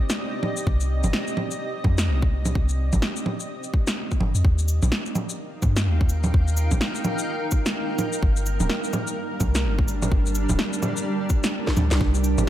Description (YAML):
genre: future garage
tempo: 127 BPM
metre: 4/4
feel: swing 60% on 16ths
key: unclear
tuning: A4 = 440 Hz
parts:
  - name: granular cloud pad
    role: sustained chords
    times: 0.0-12.5 s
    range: G3 to G5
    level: -29 LUFS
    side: right 1 dB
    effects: built-in reverb, vintage 12-bit sampler grit, sidechain pumping
  - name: electronic snare drum, shaker, bongos and cabasa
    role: drums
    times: 0.1-12.5 s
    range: none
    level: -26 LUFS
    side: right 1 dB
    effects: none
  - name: soft 808-style bass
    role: bass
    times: 0.7-12.5 s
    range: D1 to G2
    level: -22 LUFS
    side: equal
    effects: sidechain pumping
  - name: electronic kick drum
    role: drums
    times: 0.7-12.1 s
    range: none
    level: -22 LUFS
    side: equal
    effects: none
room: little or no reverb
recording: none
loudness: -21 LUFS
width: side -12 dB against mid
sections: 0.0-12.0 A section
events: drum fill 11.7-12.0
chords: 0.0 Cm; 4.4 Eb; 8.2 Gm